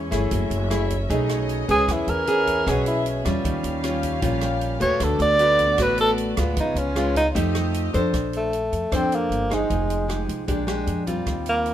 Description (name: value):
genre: bossa nova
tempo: 154 BPM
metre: 4/4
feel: straight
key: Bb major from 8.1 s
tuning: A4 = 440 Hz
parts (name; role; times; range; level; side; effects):
- nylon-string guitar; accompaniment; 0.0-11.7 s; A2 to C5; -24 LUFS; equal; none
- warm symphonic string section; sustained chords; 0.0-8.1 s; A3 to E#5; -33 LUFS; left 1 dB; none
- upright bass; bass; 0.0-11.7 s; F1 to F2; -27 LUFS; equal; none
- open jazz drum kit; drums; 0.1-11.7 s; hi-hat, kick drum, rim click; -31 LUFS; right 1 dB; none
- breathy tenor saxophone; melody; 1.7-11.7 s; Ab3 to D5; -21 LUFS; right 1 dB; none
room: light reverb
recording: minimal, uncompressed stereo recording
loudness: -20 LUFS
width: side -11 dB against mid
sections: 0.0-8.1 A section; 8.1-11.7 B section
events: tenor saxophone solo 0.0-8.1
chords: 0.3 F#m9; 1.1 B13; 1.9 E6; 3.4 D#9; 5.0 D6; 6.6 C#7; 7.3 F9; 8.1 Bbmaj9; 9.7 Fm9; 10.5 Bb13